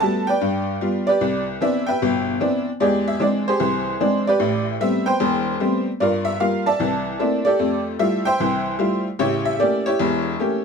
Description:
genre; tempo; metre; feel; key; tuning
solo jazz; 150 BPM; 4/4; swing 64% on 8ths; C major; A4 = 440 Hz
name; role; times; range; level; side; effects
tack piano; solo; 0.0-10.6 s; E1 to A5; -18 LUFS; equal; none
room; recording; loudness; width
light reverb; minimal, uncompressed stereo recording; -18 LUFS; side -5 dB against mid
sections
0.0-1.2 A section; 1.2-10.6 B section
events
none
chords
0.4 G7; 1.2 Cmaj9; 2.8 E7alt; 4.4 Am9; 6.0 Gm7; 6.8 C13; 7.6 Fmaj9; 9.2 A7b9

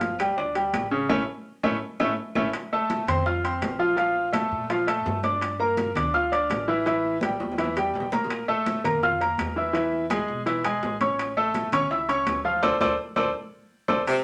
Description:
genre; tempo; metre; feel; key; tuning
latin, salsa; 166 BPM; 4/4; straight; D minor; A4 = 440 Hz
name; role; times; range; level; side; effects
bright grand piano; accompaniment; 0.0-14.0 s; C#3 to F6; -26 LUFS; equal; none
upright bass; bass; 0.0-14.0 s; G1 to Bb2; -39 LUFS; equal; none
bongos; percussion; 0.0-14.2 s; none; -39 LUFS; equal; none
congas; percussion; 0.0-14.2 s; none; -36 LUFS; equal; none
timbales; percussion; 0.0-14.2 s; none; -36 LUFS; equal; none
claves; percussion; 0.2-2.4, 8.3-14.2 s; none; -42 LUFS; equal; none
edgy saxophone section; second line; 14.1-14.2 s; C3; -24 LUFS; equal; none
room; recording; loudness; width
wet studio reverb, RT60 0.6 s; none; -25 LUFS; mono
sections
0.0-2.5 A section; 2.5-14.1 A section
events
drum fill 1.1-2.5, 7.4-8.3, 13.0-14.1; band accent 1.1-2.5, 12.6-14.1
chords
0.0 G5; 1.1 A; 2.5 Fadd11; 4.0 Bbmaj7; 5.4 Gm7; 6.9 A5; 8.3 Bb5; 9.7 E; 11.2 A; 12.6 D5

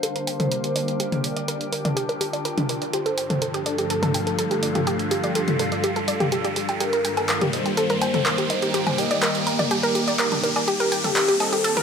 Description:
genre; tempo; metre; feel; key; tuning
melodic techno; 124 BPM; 4/4; straight; G minor; A4 = 442 Hz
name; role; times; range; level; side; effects
wide unison lead; melody; 0.0-11.8 s; G4 to Eb5; -28 LUFS; left 1 dB; lush chorus, cassette tape, dub echo
sweeping resonant pad; sustained chords; 0.0-11.8 s; G2 to C5; -30 LUFS; equal; chorus
wide unison pluck; arpeggios; 0.0-11.8 s; D4 to G5; -26 LUFS; right 1 dB; dub echo
punchy analog drum machine; drums; 0.0-11.8 s; handclaps, hi-hat, toms, woodblock; -26 LUFS; equal; none
riser; sound effects; 1.5-11.8 s; none; -29 LUFS; right 1 dB; none
granular cloud pad; texture; 0.0-11.8 s; G3 to G5; -29 LUFS; left 1 dB; built-in reverb
room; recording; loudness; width
moderate lush hall reverb, RT60 1.7 s, digital ambience; high-pass filter; -20 LUFS; side -6 dB against mid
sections
0.0-11.8 A section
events
build-up 0.0-11.8; filter sweep on synth arpeggio sound 0.0-11.8; filter sweep on analog synth lead 0.0-11.8; filter sweep on analog synth pad 0.0-11.8; riser 1.5-11.8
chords
0.0 Gm; 2.9 Dm/G; 6.8 Eb/G; 10.7 Cm/G

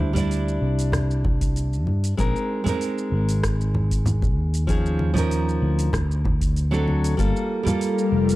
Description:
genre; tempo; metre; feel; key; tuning
sunset chillout; 96 BPM; 4/4; straight; unclear; A4 = 440 Hz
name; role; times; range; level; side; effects
nylon-string guitar; accompaniment; 0.0-8.4 s; F3 to D5; -25 LUFS; right 1 dB; auto-pan, analog delay
sustaining fretless electric bass; bass; 0.0-8.4 s; F1 to G2; -22 LUFS; equal; none
congas; percussion; 0.0-7.8 s; none; -27 LUFS; equal; none
deep house drum kit; drums; 0.2-8.4 s; hi-hat, rim click, shaker; -34 LUFS; equal; overdrive
electronic kick drum; drums; 1.2-7.3 s; none; -25 LUFS; equal; none
ethereal airy pad; sustained chords; 7.6-8.4 s; G3 to A4; -24 LUFS; left 5 dB; ensemble chorus, built-in reverb
room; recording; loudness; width
little or no reverb; dry, gritty hardware recording, cassette tape; -20 LUFS; side -17 dB against mid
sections
0.0-7.2 A section; 7.2-8.4 B section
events
none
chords
0.0 D9sus4; 2.2 Bb9sus4; 4.7 Eb9sus4; 5.9 D7; 7.2 Gm9

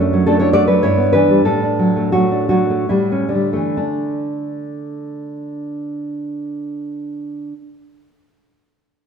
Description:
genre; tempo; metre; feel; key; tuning
romantic piece for solo classical guitar; 64-113 BPM; 3/4; rubato; D major; A4 = 440 Hz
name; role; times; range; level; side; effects
nylon-string guitar; solo; 0.0-8.0 s; F#2 to D5; -16 LUFS; equal; none
room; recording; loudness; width
moderate concert hall reverb, RT60 1.7 s; none; -15 LUFS; side -6 dB against mid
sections
0.0-3.8 A section; 3.8-8.9 B section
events
slowing down 0.0-3.8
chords
0.0 D/F#; 0.8 Em/G; 1.5 D/A; 2.9 A7; 3.8 D5

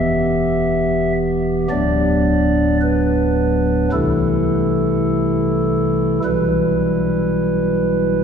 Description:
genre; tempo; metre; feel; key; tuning
classical, chorale-style piece for pipe organ; 50-55 BPM; 4/4; rubato; E minor; A4 = 440 Hz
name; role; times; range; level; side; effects
pipe organ, stopped flute; solo; 0.0-8.2 s; D1 to E5; -15 LUFS; equal; none
room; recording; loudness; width
wet church reverb, RT60 3.3 s; heard from further back in the room, nothing above 10.3 kHz; -15 LUFS; side -7 dB against mid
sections
0.0-8.2 A section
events
none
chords
0.0 Em; 1.7 Bm/D; 3.9 Am/C; 6.2 Em/B

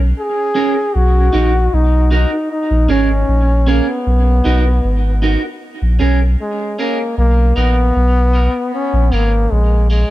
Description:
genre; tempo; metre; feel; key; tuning
reggae; 77 BPM; 4/4; straight; Bb phrygian; A4 = 440 Hz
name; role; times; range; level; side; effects
warm sub bass; bass; 0.0-10.0 s; Ab1 to Cb2; -13 LUFS; equal; none
clear trombone; melody; 0.2-10.1 s; Ab3 to Ab4; -18 LUFS; left 1 dB; tape echo
clean electric guitar; accompaniment; 0.5-10.1 s; Db4 to Bb4; -21 LUFS; right 5 dB; high-pass filter, tape echo
room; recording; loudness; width
small room ambience; dark, warm production; -12 LUFS; side -16 dB against mid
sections
0.0-10.1 A section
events
filter sweep on clean electric guitar 4.1-10.1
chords
0.0 Bbm7; 0.9 Bmaj7; 2.5 Bbm7; 4.1 Bmaj7; 5.6 Bbm7; 7.2 Bmaj7; 8.7 Bbm7

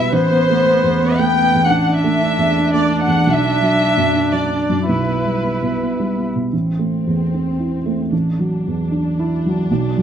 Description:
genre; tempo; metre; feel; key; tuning
neoclassical piano and strings; 114 BPM; 3/4; rubato; A dorian; A4 = 441 Hz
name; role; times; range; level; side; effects
muted chamber violin section; melody; 0.0-10.0 s; C4 to G5; -20 LUFS; left 2 dB; none
felt-muted upright piano; accompaniment; 0.0-10.0 s; A1 to E4; -17 LUFS; right 2 dB; none
muted viola; accompaniment; 0.0-6.3 s; B3 to E4; -20 LUFS; equal; none
room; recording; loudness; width
moderate recital hall reverb, RT60 1.4 s; close, detailed microphones, faint mains hum; -15 LUFS; side -9 dB against mid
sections
0.0-6.5 A section; 6.5-10.0 B section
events
none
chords
0.1 Amadd9; 1.7 Dsus2/A; 3.3 Bm; 4.9 Em/B; 6.5 Am; 8.1 Dadd9/A

